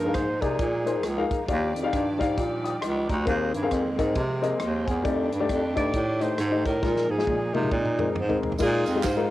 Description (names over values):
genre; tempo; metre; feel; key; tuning
uptempo gospel; 135 BPM; 4/4; swing 61% on 8ths; unclear; A4 = 440 Hz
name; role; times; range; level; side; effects
breathy alto saxophone; melody; 0.0-1.3, 5.8-8.4 s; Eb4 to D5; -30 LUFS; right 1 dB; cassette tape
dark upright piano; accompaniment; 0.0-9.3 s; Bb2 to Eb6; -27 LUFS; left 4 dB; cassette tape
bright studio string section; sustained chords; 0.0-8.6 s; Eb3 to D5; -37 LUFS; right 1 dB; cassette tape
bright tonewheel organ; sustained chords; 0.0-9.3 s; D3 to G5; -40 LUFS; right 6 dB; none
bright bass clarinet; bass; 0.0-9.3 s; Db2 to C3; -27 LUFS; right 1 dB; none
natural country drum kit; drums; 0.1-9.2 s; crash cymbal, hi-hat, kick drum, ride cymbal, rim click, snare drum, toms; -32 LUFS; right 1 dB; cassette tape
bright saxophone section; melody; 8.6-9.3 s; Eb4 to Ab4; -28 LUFS; right 1 dB; cassette tape
tambourine and handclaps; percussion; 8.6-9.2 s; none; -39 LUFS; right 9 dB; none
room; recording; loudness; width
light reverb; home recording on cassette; -23 LUFS; side -15 dB against mid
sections
0.0-8.6 A section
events
tonewheel organ fill 4.4-5.0; drum fill 6.8-8.6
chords
0.0 Bb7sus4; 3.3 Ab69/Eb; 5.0 F13; 6.8 Bb7sus4; 7.7 Bb9sus4; 8.6 Bb7sus4